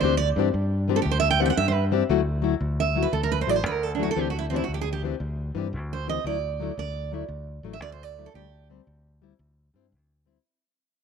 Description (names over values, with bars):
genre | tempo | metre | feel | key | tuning
highlife guitar band | 115 BPM (dotted quarters) | 12/8 | straight | unclear | A4 = 439 Hz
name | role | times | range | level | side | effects
picked steel-string acoustic guitar | melody | 0.0-8.7 s | D4 to G5 | -27 LUFS | right 9 dB | none
fingerpicked plugged-in steel-string acoustic guitar | accompaniment | 0.0-10.4 s | E3 to G4 | -27 LUFS | left 14 dB | none
fingered electric bass | bass | 0.0-10.4 s | A1 to G2 | -28 LUFS | left 1 dB | none
room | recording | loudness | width
moderate spring reverb, RT60 2.1 s | 1960s-style stereo with parts hard left and right | -23 LUFS | side -6 dB against mid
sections
0.0-2.1 A section; 2.1-10.4 B section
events
steel-string acoustic guitar solo 0.0-2.1, 2.1-10.4; fade-out 2.1-10.4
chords
0.0 C/D; 2.1 Dadd9; 4.2 C/D; 6.3 Dadd9; 8.3 C/D